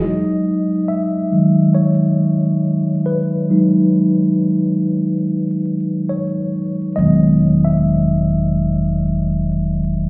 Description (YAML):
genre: R&B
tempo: 69 BPM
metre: 4/4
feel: swing 60% on 16ths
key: E major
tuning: A4 = 441 Hz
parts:
  - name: mellow tine electric piano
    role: accompaniment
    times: 0.0-10.1 s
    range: D#3 to E5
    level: -14 LUFS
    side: equal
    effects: medium stereo tremolo
  - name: upright bass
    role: bass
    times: 7.0-10.1 s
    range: E1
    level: -20 LUFS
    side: equal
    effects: none
room: moderate studio reverb, RT60 0.6 s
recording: heard muffled through a wall, stone room reverb, vinyl crackle, EQ, nothing above 7.7 kHz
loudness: -14 LUFS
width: side -28 dB against mid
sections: 0.0-10.1 A section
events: tine electric piano solo 0.0-10.1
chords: 0.0 Emaj9